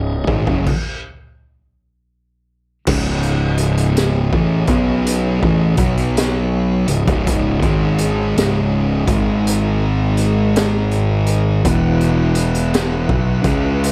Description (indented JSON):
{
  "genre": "stoner and doom metal",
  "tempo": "55 BPM",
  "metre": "4/4",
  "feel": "swing 64% on 8ths",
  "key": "C# dorian",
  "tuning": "A4 = 440 Hz",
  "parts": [
    { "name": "tonewheel organ", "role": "sustained chords", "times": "0.0-13.9 s", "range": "G#3 to F#5", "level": "-30 LUFS", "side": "equal", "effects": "slow rotary speaker, overdrive" },
    { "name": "thick fuzz guitar", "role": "riff", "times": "0.0-13.9 s", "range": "C#2 to C#4", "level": "-22 LUFS", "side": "equal", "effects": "distortion" },
    { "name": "thick fuzz guitar", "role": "riff", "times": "0.0-13.9 s", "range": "C#2 to C#4", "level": "-23 LUFS", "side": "equal", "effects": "distortion" },
    { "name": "fuzz fingered electric bass", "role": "bass", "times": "0.0-13.9 s", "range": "C#1 to C#2", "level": "-23 LUFS", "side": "equal", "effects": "overdrive" },
    { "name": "raw garage drum kit", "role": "drums", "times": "0.3-13.9 s", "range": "crash cymbal, hi-hat, kick drum, snare drum, toms", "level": "-23 LUFS", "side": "equal", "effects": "none" }
  ],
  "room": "light reverb, studio reverb",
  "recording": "none",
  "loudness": "-17 LUFS",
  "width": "mono",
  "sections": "0.0-2.9 A section; 2.9-13.9 B section",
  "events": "stop 0.7-2.9",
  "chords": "0.0 C#5; 2.9 C#m; 5.6 B5; 6.7 C#5; 8.9 G#5; 11.7 E5"
}